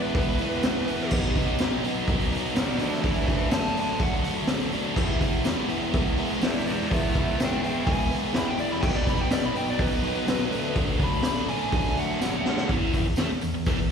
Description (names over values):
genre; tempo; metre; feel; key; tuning
garage rock duo or trio; 124 BPM; 4/4; straight; E major; A4 = 441 Hz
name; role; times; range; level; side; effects
fuzz lead guitar; melody; 0.0-12.7 s; F#4 to B5; -31 LUFS; equal; distortion, slapback echo
biting overdriven guitar; riff; 0.0-13.9 s; E2 to E4; -26 LUFS; equal; slapback echo
raw garage drum kit; drums; 0.1-13.8 s; crash cymbal, hi-hat, kick drum, snare drum; -26 LUFS; equal; none
tambourine; percussion; 0.6-13.8 s; none; -44 LUFS; right 3 dB; none
room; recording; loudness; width
little or no reverb; live gig heard through the venue's PA, recital hall reverb; -23 LUFS; side -7 dB against mid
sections
0.0-12.7 A section; 12.7-13.9 B section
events
lead electric guitar solo 0.0-12.7; drum fill 12.2-12.7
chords
0.0 E; 1.1 B; 2.8 D; 5.0 E; 8.8 B; 10.5 D; 12.7 E5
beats
0.14 0.62 | 1.10 1.59 2.07 2.55 | 3.04 3.52 4.00 4.48 | 4.97 5.45 5.93 6.42 | 6.90 7.38 7.87 8.35 | 8.84 9.32 9.80 10.29 | 10.77 11.26 11.74 12.22 | 12.71 13.19 13.68